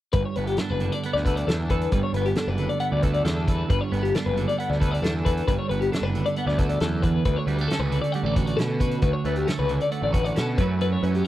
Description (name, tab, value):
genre	math rock and midwest emo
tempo	135 BPM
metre	4/4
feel	straight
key	unclear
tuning	A4 = 438 Hz
part	twelve-string electric guitar	accompaniment	0.1-11.3 s	D2 to A4	-27 LUFS	right 5 dB	spring reverb
part	twelve-string electric guitar	arpeggios	0.1-11.3 s	G4 to F#5	-27 LUFS	left 5 dB	tremolo
part	fuzz picked electric bass	bass	0.1-11.2 s	F#1 to B2	-26 LUFS	equal	overdrive
part	loose indie drum kit	drums	0.1-11.3 s	hi-hat, kick drum, snare drum	-25 LUFS	equal	none
room	small room ambience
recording	dry, close 1970s-style studio recording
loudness	-21 LUFS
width	side -14 dB against mid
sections	0.1-11.3 A section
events	none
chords	0.1 Gmaj7; 7.3 Dmaj7; 10.6 F#m7